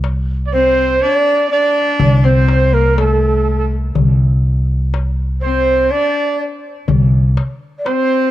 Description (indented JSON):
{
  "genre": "Turkish makam ensemble",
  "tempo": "123 BPM (eighths)",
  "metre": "10/8",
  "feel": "straight",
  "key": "unclear",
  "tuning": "A4 = 441 Hz",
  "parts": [
    { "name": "upright bass", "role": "bass", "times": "0.0-7.3 s", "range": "C2", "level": "-14 LUFS", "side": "equal", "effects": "none" },
    { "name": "darbuka", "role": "percussion", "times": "0.0-8.1 s", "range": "none", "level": "-20 LUFS", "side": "left 6 dB", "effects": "none" },
    { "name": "breathy mellow ney", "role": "melody", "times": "0.5-8.3 s", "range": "A4-35c to D5-22c", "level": "-16 LUFS", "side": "right 1 dB", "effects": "none" },
    { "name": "bright cello", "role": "second line", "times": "0.5-8.3 s", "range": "A3-33c to D4-31c", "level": "-20 LUFS", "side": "left 7 dB", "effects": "cassette tape" },
    { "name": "clear trumpet", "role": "second line", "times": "0.5-8.3 s", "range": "A4-33c to D5-29c", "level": "-20 LUFS", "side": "right 9 dB", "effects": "cassette tape" }
  ],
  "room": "small room ambience",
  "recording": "home recording on cassette",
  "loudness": "-12 LUFS",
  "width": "side -14 dB against mid",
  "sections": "0.0-8.3 A section",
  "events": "none",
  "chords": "none"
}